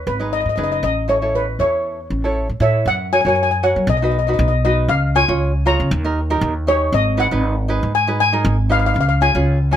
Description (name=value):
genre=calypso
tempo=118 BPM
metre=4/4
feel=swing 54% on 16ths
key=unclear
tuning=A4 = 440 Hz
part: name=steel pan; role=melody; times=0.0-9.8 s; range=B4 to A#5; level=-19 LUFS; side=left 3 dB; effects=plate reverb
part: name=upright bass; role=bass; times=0.0-9.8 s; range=F#1 to F#3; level=-19 LUFS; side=equal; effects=none
part: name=tenor ukulele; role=accompaniment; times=0.2-9.8 s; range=C#4 to C#5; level=-20 LUFS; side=right 2 dB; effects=none
room=moderate small room ambience, RT60 0.5 s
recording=none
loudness=-15 LUFS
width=side -10 dB against mid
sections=0.0-2.9 A section; 2.9-9.8 B section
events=none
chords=0.0 G#m; 0.8 A; 2.9 F#; 3.9 B; 4.9 C#; 5.9 D#7; 6.9 G#m7; 9.0 C#